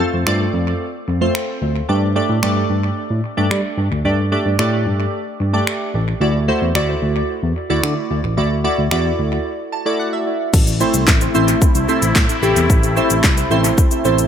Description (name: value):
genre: dance-pop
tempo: 111 BPM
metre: 4/4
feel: straight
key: A minor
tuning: A4 = 443 Hz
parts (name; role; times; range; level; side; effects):
- glassy digital keys; accompaniment; 0.0-14.3 s; A3 to A5; -19 LUFS; right 1 dB; chorus, phaser, sidechain pumping, analog delay
- tine electric piano; bass; 0.1-14.2 s; A1 to G3; -19 LUFS; equal; medium stereo tremolo, sidechain pumping
- pop drum kit; drums; 0.3-14.3 s; crash cymbal, finger snaps, handclaps, hi-hat, kick drum, shaker, snare drum; -18 LUFS; equal; analog delay
- sweeping resonant pad; sustained chords; 10.5-14.3 s; C3 to E4; -22 LUFS; left 2 dB; chorus, sidechain pumping
room: light reverb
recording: echo-heavy mix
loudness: -15 LUFS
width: side -8 dB against mid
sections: 0.0-10.5 A section; 10.5-14.3 B section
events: break 9.5-10.5; synth keys fill 9.5-10.5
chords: 0.0 F; 1.9 Gsus2; 6.2 Dadd9; 10.5 Am